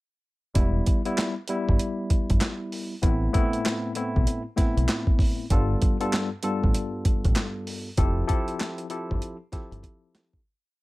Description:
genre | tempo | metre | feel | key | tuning
hip hop, boom-bap hip-hop | 97 BPM | 4/4 | swing 62% on 16ths | unclear | A4 = 440 Hz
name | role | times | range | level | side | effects
tine electric piano | accompaniment | 0.5-10.4 s | G2 to A4 | -28 LUFS | left 1 dB | medium stereo tremolo, high-pass filter, low-pass filter
deep dub fingered electric bass | bass | 0.6-9.8 s | E1 to B1 | -25 LUFS | equal | none
dusty soul sampler-style drum kit | drums | 0.6-10.4 s | handclaps, hi-hat, kick drum, snare drum | -24 LUFS | equal | overdrive
room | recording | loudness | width
little or no reverb | none | -23 LUFS | side -20 dB against mid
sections
0.6-10.4 hook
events
fade-out 8.0-10.4; drum fill 9.8-10.4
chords
0.6 Em; 3.0 Amadd9; 5.5 G7; 8.0 Fmaj7

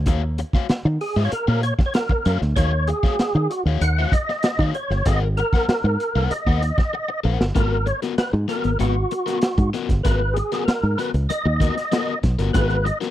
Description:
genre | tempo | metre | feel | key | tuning
funk | 96 BPM | 4/4 | straight | unclear | A4 = 437 Hz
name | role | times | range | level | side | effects
fingered electric bass | bass | 0.0-12.9 s | G1 to Eb3 | -20 LUFS | equal | none
overdriven electric guitar | accompaniment | 0.1-13.1 s | Cb4 to Gb5 | -28 LUFS | left 9 dB | none
crunchy breakbeat drum kit | drums | 0.1-13.1 s | hi-hat, kick drum, snare drum | -22 LUFS | equal | none
percussive tonewheel organ | melody | 1.0-13.0 s | Gb4 to Gb5 | -24 LUFS | right 1 dB | chorus vibrato, fast rotary speaker
room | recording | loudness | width
small room ambience | dry, close 1970s-style studio recording | -18 LUFS | side -13 dB against mid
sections
0.0-7.6 A section; 7.6-13.1 B section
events
drum fill 6.9-7.6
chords
0.0 Ebm9; 5.1 Ab9; 7.6 Abm9

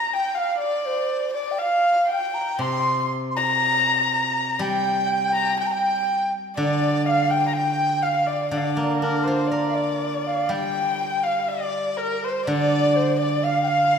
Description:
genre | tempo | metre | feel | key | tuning
chinese traditional, Chinese chamber ensemble | 61 BPM | 2/4 | rubato | D jue mode | A4 = 440 Hz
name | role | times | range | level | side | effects
mellow hollow dizi | melody | 0.0-14.0 s | Bb4 to C6 | -24 LUFS | right 3 dB | none
warm erhu | second line | 0.0-14.0 s | Bb4 to C6 | -24 LUFS | left 6 dB | none
steel-string zither | accompaniment | 2.6-14.0 s | C3 to Bb4 | -25 LUFS | right 1 dB | none
room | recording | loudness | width
wet scoring stage reverb, RT60 1.6 s | minimal, uncompressed stereo recording | -20 LUFS | side -7 dB against mid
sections
0.0-10.5 A section; 10.5-14.0 B section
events
none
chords
none

